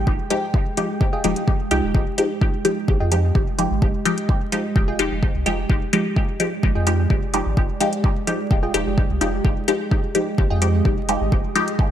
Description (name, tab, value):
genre	dub techno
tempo	128 BPM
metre	4/4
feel	straight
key	F dorian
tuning	A4 = 439 Hz
part	deep dark ambient pad	sustained chords	0.0-11.9 s	Ab3 to G5	-28 LUFS	right 3 dB	chorus, built-in reverb, sidechain pumping
part	filtered dub chord stab	stabs	0.0-11.7 s	F3 to G4	-23 LUFS	left 1 dB	phaser, sidechain pumping, dub echo
part	soft dub sub bass	bass	0.0-11.4 s	Eb1 to F2	-24 LUFS	equal	sidechain pumping
part	electronic kick drum	drums	0.1-11.9 s	none	-20 LUFS	equal	none
part	electronic hi-hat	drums	0.3-11.8 s	none	-27 LUFS	left 2 dB	none
part	wavetable chord stab	riff	1.1-10.6 s	F4 to G5	-32 LUFS	right 1 dB	sidechain pumping, dub echo
room	light reverb, digital ambience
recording	vinyl crackle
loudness	-18 LUFS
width	side -10 dB against mid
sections	0.0-1.9 A section; 1.9-11.9 A section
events	none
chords	0.0 Fm9